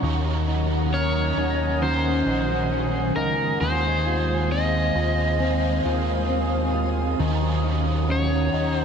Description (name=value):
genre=dream pop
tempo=67 BPM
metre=4/4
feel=straight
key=Eb dorian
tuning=A4 = 441 Hz
part: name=crunchy overdriven guitar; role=accompaniment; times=0.0-8.8 s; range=Eb3 to Bb4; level=-29 LUFS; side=right 5 dB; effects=harmonic tremolo, ensemble chorus
part: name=ethereal airy pad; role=sustained chords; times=0.0-8.8 s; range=Db4 to Eb6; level=-28 LUFS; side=right 1 dB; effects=ensemble chorus, built-in reverb
part: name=semi-hollow electric guitar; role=arpeggios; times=0.0-8.8 s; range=Eb3 to Bb4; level=-27 LUFS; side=left 4 dB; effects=lush chorus, digital delay
part: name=chorused synth bass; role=bass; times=0.0-8.8 s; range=Bb1 to Eb2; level=-25 LUFS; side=right 1 dB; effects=none
part: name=overdriven slide guitar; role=melody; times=0.9-8.8 s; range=Bb4 to Eb5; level=-26 LUFS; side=left 1 dB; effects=digital delay
part: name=glockenspiel with soft plastic mallets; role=texture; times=0.9-5.3 s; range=Eb6 to Bb6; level=-38 LUFS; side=right 4 dB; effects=stereo widening, digital delay
room=moderate lush hall reverb, RT60 1.9 s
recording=none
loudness=-20 LUFS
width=side -7 dB against mid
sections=0.0-8.8 A section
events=none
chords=0.0 Ebm7; 3.6 Fm7/Eb; 7.2 Ebm7